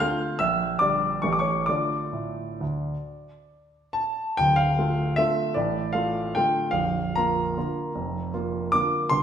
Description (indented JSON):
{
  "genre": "classical, piano waltz",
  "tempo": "124-166 BPM",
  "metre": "3/4",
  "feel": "rubato",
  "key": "D minor",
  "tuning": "A4 = 442 Hz",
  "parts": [
    { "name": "warm grand piano", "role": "solo", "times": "0.0-9.2 s", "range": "Bb0 to F6", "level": "-22 LUFS", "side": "equal", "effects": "none" }
  ],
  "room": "wet stone room reverb, RT60 1.3 s",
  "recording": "minimal, uncompressed stereo recording",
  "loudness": "-23 LUFS",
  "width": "side -8 dB against mid",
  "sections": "0.0-4.4 A section; 4.4-9.2 B section",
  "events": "none",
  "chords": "0.4 Gm/Bb; 1.2 A7; 1.7 Dm; 6.7 Bb"
}